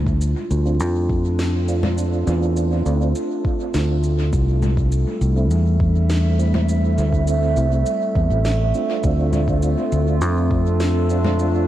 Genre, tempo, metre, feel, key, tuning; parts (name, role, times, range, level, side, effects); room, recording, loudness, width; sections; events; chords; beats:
ambient dub; 102 BPM; 4/4; straight; D minor; A4 = 440 Hz
warbly tape-like pad; sustained chords; 0.0-11.7 s; G3 to E5; -24 LUFS; right 1 dB; chorus, built-in reverb, vintage 12-bit sampler grit
fingered electric bass; bass; 0.0-11.7 s; A1 to F2; -18 LUFS; equal
electronic kick drum; drums; 0.1-10.6 s; -23 LUFS; equal; overdrive
electronic shaker, snare drum and congas; drums; 0.2-11.5 s; -30 LUFS; left 2 dB; overdrive, dub echo
mellow tonewheel organ; stabs; 0.7-11.7 s; A3 to F4; -28 LUFS; right 3 dB; chorus vibrato, slow rotary speaker, low-pass filter, dub echo
light reverb, digital ambience; vinyl crackle; -17 LUFS; side -13 dB against mid
0.0-11.7 A section
filter sweep on tonewheel organ 0.0-11.7
0.0 Dm7; 4.3 C6; 9.0 Dm7
0.21 0.80 1.39 | 1.98 2.57 3.15 3.74 | 4.33 4.92 5.51 6.10 | 6.68 7.27 7.86 8.45 | 9.04 9.63 10.21 10.80 | 11.39